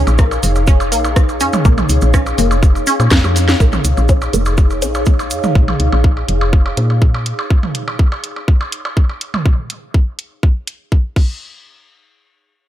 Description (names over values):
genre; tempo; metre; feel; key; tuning
minimal techno; 123 BPM; 4/4; straight; Bb minor; A4 = 438 Hz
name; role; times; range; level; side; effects
woody FM bass; bass; 0.0-7.3 s; F1 to Bb2; -16 LUFS; equal; sidechain pumping
ethereal airy pad; texture; 0.0-7.5 s; Eb4 to F5; -22 LUFS; left 1 dB; ensemble chorus, built-in reverb, sidechain pumping
cabasa; percussion; 0.1-5.5 s; none; -27 LUFS; right 4 dB; none
electronic percussion blips and toms; percussion; 0.1-9.4 s; none; -22 LUFS; right 2 dB; dub echo
resonant blip pluck; riff; 0.2-5.1 s; Bb3 to Db4; -21 LUFS; equal; phaser, lush chorus, sidechain pumping, dub echo
electronic kick drum; drums; 0.2-11.3 s; none; -12 LUFS; equal; overdrive
garage drum kit; drums; 0.2-11.3 s; crash cymbal, hi-hat, rim click, snare drum; -20 LUFS; equal; overdrive, analog delay
room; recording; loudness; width
digital ambience; echo-heavy mix; -12 LUFS; side -12 dB against mid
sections
0.0-3.6 A section; 3.6-11.4 B section; 11.4-12.7 C section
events
drop 0.0-3.6; drum fill 3.1-3.6; filter sweep on FM bass 3.6-7.5; filter sweep on synth arpeggio sound 3.6-5.6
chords
0.0 Bbm; 11.2 N.C.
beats
0.19 0.68 1.16 | 1.65 2.14 2.63 3.11 | 3.60 4.09 4.58 5.07 | 5.55 6.04 6.53 7.02 | 7.50 7.99 8.48 8.97 | 9.46 9.94 10.43 10.92